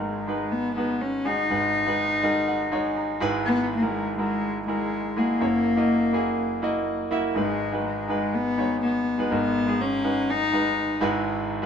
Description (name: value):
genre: pop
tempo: 123 BPM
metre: 4/4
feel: straight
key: G# minor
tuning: A4 = 436 Hz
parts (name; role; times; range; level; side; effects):
- warm cello; melody; 0.0-11.0 s; G#3 to D#4; -25 LUFS; left 2 dB; none
- bright concert grand piano; accompaniment; 0.0-11.7 s; F#1 to B5; -26 LUFS; right 1 dB; none
room: wet small room reverb, RT60 0.5 s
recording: dark, warm production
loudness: -22 LUFS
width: side -7 dB against mid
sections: 0.0-7.4 A section; 7.4-11.7 B section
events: grand piano fill 2.0-3.5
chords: 0.0 G#m7; 3.2 Eadd9/G#; 5.4 F#7; 7.4 G#m7; 11.0 Eadd9/G#